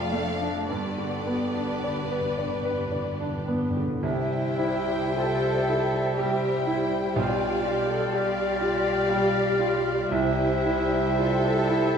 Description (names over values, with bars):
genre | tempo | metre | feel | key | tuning
classical, romantic movement for piano and orchestra | 51-64 BPM | 3/4 | rubato | C major | A4 = 440 Hz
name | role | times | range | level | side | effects
bright concert grand piano | melody | 0.0-12.0 s | B1 to D5 | -28 LUFS | right 1 dB | none
rich symphonic violin section | melody | 0.0-12.0 s | D5 to G5 | -38 LUFS | left 2 dB | none
warm symphonic violin section | second line | 0.0-12.0 s | G4 to D5 | -35 LUFS | left 3 dB | none
warm symphonic viola section | accompaniment | 0.0-12.0 s | G3 to F4 | -33 LUFS | left 1 dB | none
dark symphonic cello section | bass | 0.0-12.0 s | D3 to A4 | -32 LUFS | right 1 dB | none
warm symphonic double bass section | bass | 0.0-12.0 s | F1 to C2 | -36 LUFS | right 2 dB | none
timpani | percussion | 0.7-4.0 s | G2 | -35 LUFS | equal | none
clear oboe | second line | 4.0-12.0 s | E5 to F5 | -35 LUFS | equal | none
flute section | second line | 4.0-12.0 s | G5 | -35 LUFS | left 2 dB | none
warm clarinet | second line | 4.0-12.0 s | C5 to D5 | -33 LUFS | left 2 dB | none
mellow bassoon | accompaniment | 4.0-12.0 s | G3 | -32 LUFS | left 1 dB | none
dark French horn section | sustained chords | 4.0-12.0 s | G3 to G4 | -32 LUFS | equal | none
room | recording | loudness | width
wet stone room reverb, RT60 1.2 s | heard from further back in the room | -23 LUFS | side -7 dB against mid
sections
0.0-4.0 A section; 4.0-12.0 B section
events
timpani fill 0.7-4.0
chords
0.0 Dm/F; 0.7 G; 4.0 C; 7.2 G7/B; 10.1 C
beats
| 0.68 1.82 2.93 | 4.03 5.16 6.18 | 7.16 8.13 9.12 | 10.12 11.19